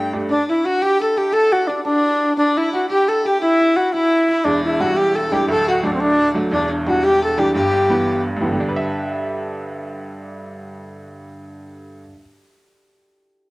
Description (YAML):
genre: celtic folk, Celtic jig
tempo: 116 BPM (dotted quarters)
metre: 6/8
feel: straight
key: G major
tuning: A4 = 439 Hz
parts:
  - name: reedy concert flute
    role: melody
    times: 0.0-8.2 s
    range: C4 to A4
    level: -16 LUFS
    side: equal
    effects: cassette tape, plate reverb
  - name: rich fiddle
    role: second line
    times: 0.0-8.2 s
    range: D4 to A4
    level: -26 LUFS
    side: left 2 dB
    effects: cassette tape, plate reverb
  - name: bright upright piano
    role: accompaniment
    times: 0.0-0.3, 4.4-12.2 s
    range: D1 to E5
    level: -22 LUFS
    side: right 1 dB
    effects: cassette tape
  - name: hammered dulcimer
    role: second line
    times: 0.3-10.7 s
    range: D4 to A4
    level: -28 LUFS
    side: right 1 dB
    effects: cassette tape
room: moderate studio reverb, RT60 0.6 s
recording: home recording on cassette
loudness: -15 LUFS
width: side -22 dB against mid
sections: 0.3-8.6 A section; 8.6-10.6 B section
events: none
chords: 0.3 N.C.; 4.4 Em7; 5.5 D; 6.5 Em7; 7.5 G6